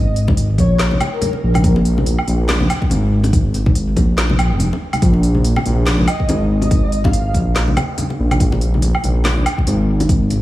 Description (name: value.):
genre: deep dubstep.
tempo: 142 BPM.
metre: 4/4.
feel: swing 57% on 16ths, half-time.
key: Bb minor.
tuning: A4 = 439 Hz.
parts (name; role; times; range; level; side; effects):
breathy flute-like synth lead; melody; 0.0-1.7, 6.1-7.3 s; Bb4 to F5; -26 LUFS; left 1 dB; ensemble chorus, dub echo.
dark detuned saw bass; bass; 0.0-10.4 s; F1 to Bb1; -15 LUFS; equal; none.
deep house drum kit; drums; 0.2-10.4 s; handclaps, hi-hat, snare drum, woodblock; -23 LUFS; right 1 dB; none.
electronic kick drum; drums; 0.3-10.2 s; none; -17 LUFS; equal; none.
congas; percussion; 0.3-10.4 s; none; -23 LUFS; left 2 dB; dub echo.
room: light reverb.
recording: vinyl crackle, small room ambience.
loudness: -13 LUFS.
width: side -16 dB against mid.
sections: 0.0-10.4 A section.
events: none.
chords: 0.0 Bb5.